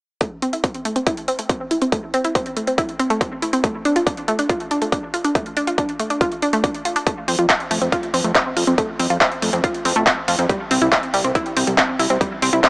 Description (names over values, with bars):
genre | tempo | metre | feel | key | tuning
uplifting trance | 140 BPM | 4/4 | straight | A minor | A4 = 440 Hz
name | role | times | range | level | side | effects
wide unison pluck | arpeggios | 0.2-12.7 s | G3 to F4 | -20 LUFS | equal | cassette tape, sidechain pumping, tape echo
big-room dance drum kit | drums | 0.2-12.7 s | handclaps, hi-hat | -21 LUFS | equal | none
electronic kick drum | drums | 0.2-12.7 s | none | -22 LUFS | equal | none
fat analog bass | bass | 7.3-12.6 s | C2 to F2 | -23 LUFS | equal | tube saturation, sidechain pumping
room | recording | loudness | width
light reverb, digital ambience | small speaker sound | -17 LUFS | side -29 dB against mid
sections
0.2-12.7 A section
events
filter sweep on synth arpeggio sound 0.2-12.7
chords
0.2 Am; 3.6 Dm; 7.1 F5; 10.5 N.C.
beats
| 0.21 0.64 1.07 1.50 | 1.92 2.35 2.78 3.21 | 3.64 4.07 4.50 4.92 | 5.35 5.78 6.21 6.64 | 7.07 7.50 7.92 8.35 | 8.78 9.21 9.64 10.07 | 10.49 10.92 11.35 11.78 | 12.21 12.64